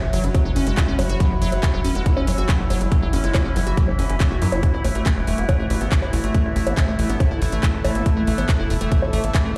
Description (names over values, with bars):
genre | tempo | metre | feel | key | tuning
psychedelic trance | 140 BPM | 4/4 | straight | F# minor | A4 = 439 Hz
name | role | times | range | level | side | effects
overtone-sweeping drone | sustained chords | 0.0-9.6 s | E3 to E4 | -31 LUFS | equal | chorus, built-in reverb, sidechain pumping
liquid acid bass | riff | 0.0-9.5 s | E3 to F#4 | -29 LUFS | equal | phaser, sidechain pumping, dub echo
tight sequencer bass | bass | 0.0-9.5 s | E1 to F#2 | -25 LUFS | equal | none
granular cloud pad | texture | 0.0-9.6 s | E4 to F#5 | -34 LUFS | equal | built-in reverb, sidechain pumping
big-room dance drum kit | drums | 0.1-9.4 s | bongos, handclaps, hi-hat | -31 LUFS | equal | none
vowel-sweep wobble bass | second line | 0.2-9.5 s | F#3 to E4 | -39 LUFS | equal | none
electronic kick drum | drums | 0.3-9.4 s | none | -21 LUFS | equal | none
room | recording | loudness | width
light reverb, digital ambience | played on a big sound system in a bare room, large studio reverb | -20 LUFS | mono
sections
0.0-9.6 A section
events
none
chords
0.0 F#5; 4.6 A5